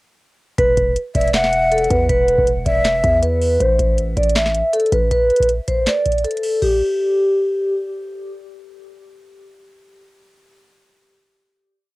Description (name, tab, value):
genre	hip hop, trap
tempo	159 BPM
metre	4/4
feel	half-time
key	E minor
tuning	A4 = 440 Hz
part	vibraphone with soft mallets	melody	0.6-7.7 s	G4 to E5	-17 LUFS	equal	cassette tape, tape echo
part	distorted 808-style bass	bass	0.6-5.1 s	E1 to E2	-22 LUFS	equal	distortion
part	booming analog drum machine	drums	0.6-6.8 s	crash cymbal, handclaps, hi-hat, kick drum, snare drum	-21 LUFS	equal	cassette tape
part	breathy mellow silver concert flute	second line	1.1-3.2 s	E5 to F#5	-22 LUFS	left 2 dB	cassette tape, tape echo
room	light reverb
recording	home recording on cassette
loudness	-15 LUFS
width	side -20 dB against mid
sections	0.6-6.6 hook; 6.6-9.6 final note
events	none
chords	0.6 Esus2; 3.6 Am; 5.1 N.C.